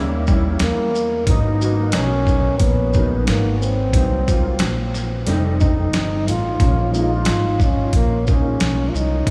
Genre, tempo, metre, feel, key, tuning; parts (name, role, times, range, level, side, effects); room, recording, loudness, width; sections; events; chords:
hip hop, jazz-hop; 90 BPM; 4/4; swing 58% on 16ths; A4 = 439 Hz
dark baby grand piano; accompaniment; 0.0-9.3 s; Fb3 to Bb4; -28 LUFS; equal; ensemble chorus
upright bass; bass; 0.0-9.3 s; F1 to Fb2; -23 LUFS; equal
boom bap sampler-style drum kit; drums; 0.3-9.3 s; hi-hat, kick drum, shaker, snare drum; -23 LUFS; equal
breathy trombone; melody; 0.6-9.3 s; Bb3 to F4; -25 LUFS; equal; analog delay
moderate huge ambient reverb, RT60 8.6 s; dreamy mix soaked in reverb, studio reverb; -18 LUFS; mono
0.0-9.3 A section
0.0 Eb7b9; 1.3 Abm9; 3.9 Cm7b5; 5.3 F7; 6.6 Bbm7